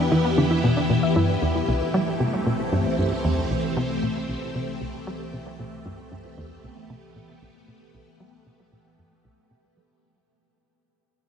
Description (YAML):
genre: ambient, sequencer-driven space music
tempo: 115 BPM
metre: 4/4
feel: straight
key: unclear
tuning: A4 = 440 Hz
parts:
  - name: phased string machine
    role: sustained chords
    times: 0.0-10.0 s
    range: E3 to G4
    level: -26 LUFS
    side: left 1 dB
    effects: ensemble chorus, phaser
  - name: warbly dusty pluck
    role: arpeggios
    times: 0.0-1.7 s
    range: D4 to E5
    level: -29 LUFS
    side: left 1 dB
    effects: chorus, auto-pan, tape echo
  - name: fat analog bass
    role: bass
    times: 0.0-10.0 s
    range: C2 to E2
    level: -39 LUFS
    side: equal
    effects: none
  - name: tight sequencer bass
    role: riff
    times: 0.1-10.0 s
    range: C2 to G3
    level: -25 LUFS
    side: equal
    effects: lush chorus, tape echo
room: wet huge ambient reverb, RT60 7.7 s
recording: dreamy mix soaked in reverb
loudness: -21 LUFS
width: side -7 dB against mid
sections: 0.0-10.0 A section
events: fade-out on analog synth bass 0.0-10.0; fade-out 0.0-10.0; filter sweep on analog synth bass 0.0-10.0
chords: 0.0 Em7; 1.7 C6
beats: 0.12 0.64 1.16 | 1.68 2.20 2.73 3.25 | 3.77 4.29 4.81 5.33 | 5.86 6.38 6.90 7.42 | 7.94 8.46 8.99 9.51